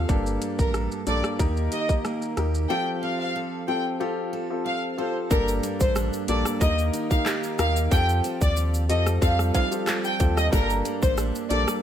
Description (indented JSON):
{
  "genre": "dancehall",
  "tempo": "92 BPM",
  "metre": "4/4",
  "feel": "straight",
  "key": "G minor",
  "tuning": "A4 = 440 Hz",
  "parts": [
    { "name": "warm baby grand piano", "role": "accompaniment", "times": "0.0-11.8 s", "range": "Bb3 to Bb4", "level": "-29 LUFS", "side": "left 4 dB", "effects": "none" },
    { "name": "picked steel-string acoustic guitar", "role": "arpeggios", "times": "0.0-11.8 s", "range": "G2 to A4", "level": "-32 LUFS", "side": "right 9 dB", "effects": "none" },
    { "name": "warm sub bass", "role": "bass", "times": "0.0-11.7 s", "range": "G1 to F2", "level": "-25 LUFS", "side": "equal", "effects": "none" },
    { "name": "island pop drum kit", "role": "drums", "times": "0.1-11.8 s", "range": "handclaps, hi-hat, kick drum, rim click, shaker", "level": "-26 LUFS", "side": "equal", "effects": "none" },
    { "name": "warm studio violin section", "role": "melody", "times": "0.6-11.6 s", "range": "Bb4 to G5", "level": "-28 LUFS", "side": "equal", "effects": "digital delay" },
    { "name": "egg shaker and timbales", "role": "percussion", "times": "5.3-11.8 s", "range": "none", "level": "-37 LUFS", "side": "right 4 dB", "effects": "none" }
  ],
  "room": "studio reverb",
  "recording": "none",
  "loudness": "-22 LUFS",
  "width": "side -10 dB against mid",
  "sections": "0.0-5.3 A section; 5.3-11.8 B section",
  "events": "break 2.7-5.3",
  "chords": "0.1 Gmadd9; 1.4 Eb; 2.7 Fadd9; 5.3 Gmadd9; 6.6 Eb; 7.9 Fadd9; 10.5 Gmadd9"
}